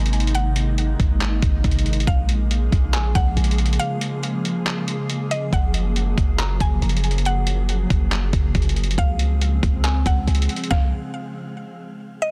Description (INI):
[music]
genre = hip hop, atmospheric cloud-rap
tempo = 139 BPM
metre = 4/4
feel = half-time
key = Db major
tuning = A4 = 440 Hz
[part]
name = glassy FM pad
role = sustained chords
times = 0.0-10.7 s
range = C3 to Ab4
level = -29 LUFS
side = equal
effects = ensemble chorus, built-in reverb
[part]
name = warm 808-style bass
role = bass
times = 0.0-10.5 s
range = Gb1 to Db2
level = -23 LUFS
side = equal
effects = none
[part]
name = trip hop sampler-style drum kit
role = drums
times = 0.1-10.8 s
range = handclaps, hi-hat, kick drum, snare drum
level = -24 LUFS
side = equal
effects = none
[part]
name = mallet-like synth pluck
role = melody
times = 0.3-12.3 s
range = Eb5 to Bb5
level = -31 LUFS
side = equal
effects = chorus, digital delay
[sound]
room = little or no reverb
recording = dense, heavily limited modern master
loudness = -21 LUFS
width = mono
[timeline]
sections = 0.0-12.3 A section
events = break 3.8-5.5; stop 10.7-12.3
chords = 0.0 Abadd9; 2.1 Bbm7; 5.5 Gbmaj7; 9.0 Dbmaj7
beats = | 0.35 0.78 1.21 1.64 | 2.07 2.50 2.94 3.37 | 3.80 4.23 4.66 5.09 | 5.53 5.96 6.39 6.82 | 7.25 7.68 8.12 8.55 | 8.98 9.41 9.84 10.28 | 10.71 11.14 11.57 12.00